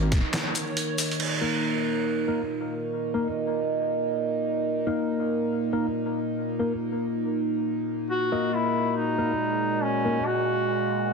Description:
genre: deep dubstep.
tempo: 139 BPM.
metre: 4/4.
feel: swing 61% on 16ths, half-time.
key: Eb minor.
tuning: A4 = 439 Hz.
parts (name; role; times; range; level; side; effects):
overtone-sweeping drone; sustained chords; 0.0-11.1 s; Bb2 to Gb4; -27 LUFS; right 2 dB; chorus, built-in reverb, vintage 12-bit sampler grit.
backwards swelling texture; texture; 0.0-1.2 s; Db5; -41 LUFS; right 2 dB; built-in reverb.
trip hop sampler-style drum kit; drums; 0.1-1.3 s; crash cymbal, handclaps, hi-hat, shaker, snare drum; -28 LUFS; right 2 dB; none.
mellow tine electric piano; stabs; 1.4-10.2 s; Bb3 to Eb5; -30 LUFS; left 2 dB; analog chorus, dub echo.
warm duduk; melody; 8.1-11.1 s; Db4 to Gb4; -26 LUFS; left 1 dB; dub echo.
room: moderate spring reverb, RT60 1.9 s.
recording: dense, heavily limited modern master.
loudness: -24 LUFS.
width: side -4 dB against mid.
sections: 0.0-1.2 A section; 1.2-11.1 B section.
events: none.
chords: 0.0 Eb5.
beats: 0.34 0.77 | 1.20 1.63 2.06 2.49 | 2.92 3.36 3.79 4.22 | 4.65 5.08 5.51 5.95 | 6.38 6.81 7.24 7.67 | 8.11 8.54 8.97 9.40 | 9.83 10.26 10.70 11.13.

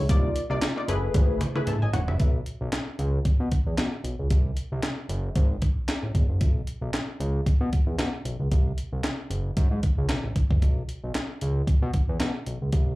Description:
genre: early-eighties boogie funk.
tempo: 114 BPM.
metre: 4/4.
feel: swing 56% on 16ths.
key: unclear.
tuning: A4 = 439 Hz.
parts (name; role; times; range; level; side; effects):
fat analog bass; bass; 0.0-12.9 s; E1 to B2; -27 LUFS; equal; none.
funky polysynth comp; accompaniment; 0.1-2.3 s; A3 to A5; -29 LUFS; left 2 dB; chorus, slapback echo.
breakbeat sampler-style drum kit; drums; 0.1-12.9 s; handclaps, hi-hat, kick drum, snare drum, toms; -24 LUFS; equal; none.
room: little or no reverb.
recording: live gig heard through the venue's PA, club ambience.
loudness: -23 LUFS.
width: side -19 dB against mid.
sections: 0.0-2.2 A section; 2.2-13.0 B section.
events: drum fill 1.1-2.2.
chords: 0.1 Cm11; 0.9 F#m11; 2.2 Bsus24; 4.3 N.C.; 5.1 F#m9; 6.4 Bsus2; 8.5 N.C.; 9.3 F#madd9; 10.6 Bsus2.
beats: | 0.10 0.62 1.15 1.67 | 2.20 2.73 3.25 3.78 | 4.31 4.83 5.36 5.88 | 6.41 6.94 7.46 7.99 | 8.52 9.04 9.57 10.10 | 10.62 11.15 11.67 12.20 | 12.73.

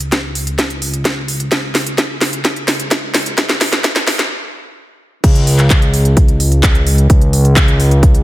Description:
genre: EDM, festival progressive house.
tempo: 129 BPM.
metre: 4/4.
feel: straight.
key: unclear.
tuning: A4 = 438 Hz.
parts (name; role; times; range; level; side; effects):
fat analog bass; bass; 0.0-8.2 s; Db2; -15 LUFS; equal; sidechain pumping.
house drum kit; drums; 0.0-8.2 s; crash cymbal, handclaps, hi-hat, snare drum; -16 LUFS; equal; none.
electronic kick drum; drums; 0.1-8.1 s; none; -11 LUFS; equal; high-pass filter on kick.
room: light reverb, digital ambience.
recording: high-pass filter.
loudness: -11 LUFS.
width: side -16 dB against mid.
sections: 0.0-5.2 A section; 5.2-8.2 B section.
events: build-up 0.0-5.2; drum fill 0.0-4.3; stop 4.3-5.2; drop 5.2-8.2.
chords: none.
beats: 0.12 0.59 1.05 | 1.52 1.98 2.45 2.91 | 3.38 3.84 4.31 4.77 | 5.24 5.70 6.17 6.63 | 7.10 7.56 8.03.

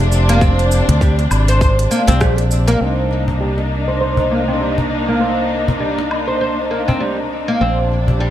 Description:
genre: organic downtempo.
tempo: 100 BPM.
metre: 4/4.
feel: swing 58% on 16ths.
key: C minor.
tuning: A4 = 441 Hz.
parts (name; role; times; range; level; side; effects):
rich studio string section; sustained chords; 0.0-8.3 s; C3 to Eb4; -20 LUFS; left 1 dB; sidechain pumping.
fretless electric bass; bass; 0.0-8.3 s; F1 to D2; -17 LUFS; equal; sidechain pumping.
organic electronic drum kit; drums; 0.0-6.2 s; cabasa, hi-hat, rim click, woodblock; -24 LUFS; equal; overdrive.
oud; arpeggios; 0.3-8.3 s; G3 to C5; -19 LUFS; right 1 dB; low-pass filter, digital delay.
electronic kick drum; drums; 0.4-2.3 s; none; -16 LUFS; equal; overdrive.
cajon; percussion; 0.7-8.2 s; none; -21 LUFS; left 1 dB; none.
room: light reverb.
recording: dark, warm production.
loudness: -14 LUFS.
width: side -12 dB against mid.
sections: 0.0-2.8 A section; 2.8-8.3 B section.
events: filter sweep on oud 2.8-8.3.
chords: 0.0 Bb9; 2.8 Cm9; 7.6 Bbadd9.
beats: | 0.41 1.01 1.61 2.21 | 2.81 3.41 4.01 4.61 | 5.21 5.81 6.41 7.01 | 7.61 8.21.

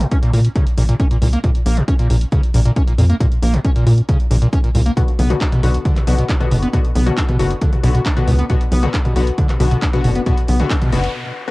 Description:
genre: driving peak-time techno.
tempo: 136 BPM.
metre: 4/4.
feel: straight.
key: unclear.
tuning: A4 = 440 Hz.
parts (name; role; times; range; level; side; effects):
overdriven acid bass; riff; 0.0-11.0 s; Bb2 to D4; -19 LUFS; equal; lush chorus, vintage 12-bit sampler grit, sidechain pumping, cassette tape, tape echo.
tight sequencer bass; bass; 0.0-11.1 s; F#1 to Bb2; -15 LUFS; equal; sidechain pumping.
punchy analog drum machine; drums; 0.0-11.1 s; handclaps, hi-hat, toms; -26 LUFS; equal; cassette tape.
electronic kick drum; drums; 0.1-10.8 s; none; -17 LUFS; equal; cassette tape.
supersaw stab; stabs; 5.0-11.5 s; D3 to F#4; -23 LUFS; left 5 dB; sidechain pumping, cassette tape, tape echo.
noise sweep; sound effects; 10.8-11.5 s; none; -30 LUFS; left 1 dB; none.
room: little or no reverb.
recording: home recording on cassette.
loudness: -13 LUFS.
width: side -22 dB against mid.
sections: 0.0-11.5 A section.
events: noise sweep 10.8-11.5; break 11.1-11.5.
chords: 0.0 Bbm; 5.0 Bm.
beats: 0.12 0.56 1.00 | 1.44 1.88 2.32 2.76 | 3.20 3.65 4.09 4.53 | 4.97 5.41 5.85 6.29 | 6.73 7.17 7.62 8.06 | 8.50 8.94 9.38 9.82 | 10.26 10.70 11.15.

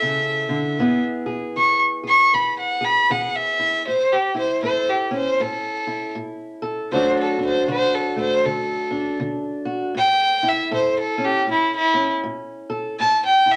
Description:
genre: acoustic country blues, solo or duo.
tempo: 79 BPM.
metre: 4/4.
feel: swing 61% on 8ths.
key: A major.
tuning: A4 = 436 Hz.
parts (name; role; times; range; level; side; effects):
dark fiddle; melody; 0.0-13.6 s; E4 to C#6; -21 LUFS; equal; none.
fingerpicked old ladder-braced acoustic guitar; accompaniment; 0.0-13.6 s; A2 to A4; -27 LUFS; equal; none.
room: moderate club reverb, RT60 0.6 s.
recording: none.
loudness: -21 LUFS.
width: mono.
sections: 0.0-3.9 A section; 3.9-13.6 B section.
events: fiddle solo 3.9-13.6.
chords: 0.0 A; 0.8 E; 3.9 A; 6.9 D; 10.0 A.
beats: 0.02 | 0.78 1.55 2.32 3.09 | 3.85 4.62 5.38 6.15 | 6.91 7.67 8.44 9.20 | 9.96 10.72 11.47 12.23 | 12.99.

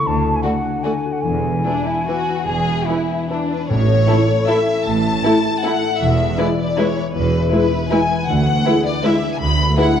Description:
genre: classical, orchestral ballroom waltz.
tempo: 137-172 BPM.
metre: 3/4.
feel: rubato.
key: A major.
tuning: A4 = 441 Hz.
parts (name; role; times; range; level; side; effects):
hollow concert flute; second line; 0.0-3.3 s; F#5 to A5; -23 LUFS; left 1 dB; none.
concert harp; arpeggios; 0.0-10.0 s; A2 to G#5; -24 LUFS; left 6 dB; none.
dark studio double bass section; bass; 0.1-9.7 s; E1 to D2; -23 LUFS; right 4 dB; none.
rich studio cello section; bass; 0.1-9.7 s; D2 to A2; -24 LUFS; right 3 dB; none.
rich studio violin section; melody; 0.4-10.0 s; B4 to B5; -21 LUFS; left 4 dB; none.
warm studio violin section; second line; 0.4-9.9 s; D4 to B4; -25 LUFS; left 1 dB; none.
dark studio viola section; accompaniment; 0.4-9.9 s; E3 to E4; -24 LUFS; right 2 dB; none.
timpani; percussion; 3.7-4.2 s; A2; -22 LUFS; right 2 dB; none.
warm French horn section; sustained chords; 4.1-9.9 s; G#3 to E4; -24 LUFS; left 2 dB; none.
room: wet scoring stage reverb, RT60 1.9 s.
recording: worn, warbling old tape, cassette tape, warbly pitch drift.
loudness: -15 LUFS.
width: side -8 dB against mid.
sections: 0.0-3.7 A section; 3.7-10.0 B section.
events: none.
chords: 0.1 D; 1.2 E; 3.7 A; 6.0 E; 8.3 E7/D.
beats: | 0.07 0.44 0.84 | 1.24 1.65 2.08 | 2.48 2.89 3.31 | 3.70 4.08 4.48 | 4.86 5.25 5.64 | 6.01 6.39 6.78 | 7.15 7.53 7.92 | 8.29 8.66 9.05 | 9.42 9.79.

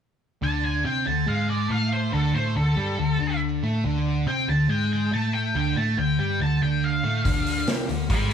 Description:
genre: blues rock power trio and southern rock.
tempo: 141 BPM.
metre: 4/4.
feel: straight.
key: D minor.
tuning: A4 = 442 Hz.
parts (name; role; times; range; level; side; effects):
octave-fuzz lead guitar; melody; 0.4-8.3 s; A4 to A5; -28 LUFS; equal; wah, distortion, analog delay.
thick fuzz guitar; riff; 0.4-8.3 s; D3 to C4; -25 LUFS; equal; distortion.
vintage muted picked electric bass; bass; 0.4-8.3 s; D2 to C3; -27 LUFS; left 1 dB; none.
vintage drum kit; drums; 7.3-8.3 s; hi-hat, kick drum, snare drum; -24 LUFS; equal; none.
room: moderate large studio reverb, RT60 1.4 s.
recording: band playing live in one room.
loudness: -22 LUFS.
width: side -8 dB against mid.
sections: 0.4-8.3 A section.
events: none.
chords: 0.4 D5.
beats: | 0.43 0.86 1.28 1.71 | 2.14 2.56 2.99 3.42 | 3.84 4.27 4.70 5.12 | 5.55 5.97 6.40 6.82 | 7.25 7.67 8.10.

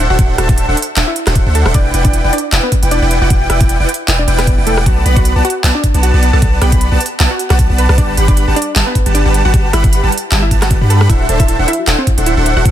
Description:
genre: future bass.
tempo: 154 BPM.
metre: 4/4.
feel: swing 55% on 16ths, half-time.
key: G major.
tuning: A4 = 445 Hz.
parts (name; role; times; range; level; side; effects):
airy dreamy lead; arpeggios; 0.0-12.7 s; F#5 to B5; -22 LUFS; equal; chorus, sidechain pumping, ping-pong delay.
supersaw chords; riff; 0.0-12.7 s; G3 to B5; -18 LUFS; right 1 dB; sidechain pumping.
long sustained 808-style bass; bass; 0.0-12.7 s; D1 to G2; -13 LUFS; equal; tube saturation, sidechain pumping.
wide unison pluck; melody; 0.1-12.7 s; A3 to B5; -20 LUFS; equal; sidechain pumping, ping-pong delay.
electronic kick drum; drums; 0.2-12.7 s; none; -12 LUFS; equal; none.
pop drum kit; drums; 0.2-12.7 s; handclaps, hi-hat, rim click; -18 LUFS; right 1 dB; none.
soft round pluck; arpeggios; 11.1-12.7 s; E4 to C5; -25 LUFS; left 4 dB; chorus, cassette tape, sidechain pumping, ping-pong delay.
room: digital ambience.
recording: dense, heavily limited modern master.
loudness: -10 LUFS.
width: side -11 dB against mid.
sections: 0.0-12.7 A section.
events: none.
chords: 0.0 D9; 1.7 Em7; 4.9 Bm7; 8.0 Gmaj7; 11.1 D9.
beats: | 0.19 0.58 0.97 1.36 | 1.75 2.13 2.52 2.91 | 3.30 3.69 4.08 4.47 | 4.86 5.25 5.64 6.03 | 6.42 6.81 7.20 7.59 | 7.98 8.37 8.76 9.15 | 9.54 9.93 10.32 10.71 | 11.10 11.49 11.88 12.27 | 12.65.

